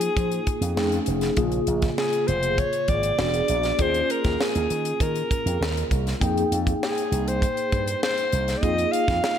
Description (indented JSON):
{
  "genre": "polished 1980s jazz-funk pop",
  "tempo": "99 BPM",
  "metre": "4/4",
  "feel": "straight",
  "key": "F minor",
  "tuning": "A4 = 440 Hz",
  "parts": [
    { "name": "breathy alto saxophone", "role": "melody", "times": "0.0-9.4 s", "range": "Ab4 to F5", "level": "-25 LUFS", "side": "left 1 dB", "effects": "slapback echo" },
    { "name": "mellow tine electric piano", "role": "accompaniment", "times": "0.0-9.4 s", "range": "Db3 to G5", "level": "-27 LUFS", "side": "left 1 dB", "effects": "medium stereo tremolo, ensemble chorus, slapback echo" },
    { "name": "slap bass with an envelope filter", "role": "bass", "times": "0.0-9.2 s", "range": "E1 to F3", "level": "-27 LUFS", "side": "right 1 dB", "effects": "none" },
    { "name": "tight funk drum kit", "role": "drums", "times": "0.0-9.4 s", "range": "hi-hat, kick drum, snare drum", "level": "-28 LUFS", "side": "equal", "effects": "none" }
  ],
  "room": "light reverb, studio ambience",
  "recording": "none",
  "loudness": "-21 LUFS",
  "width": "side -9 dB against mid",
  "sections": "0.0-9.4 A section",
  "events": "none",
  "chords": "0.0 Bb7sus4/F; 0.8 F7alt; 1.4 Bbm7; 3.2 E9; 3.8 Eb9sus4; 6.2 Fm11; 8.6 Bb7sus4/F"
}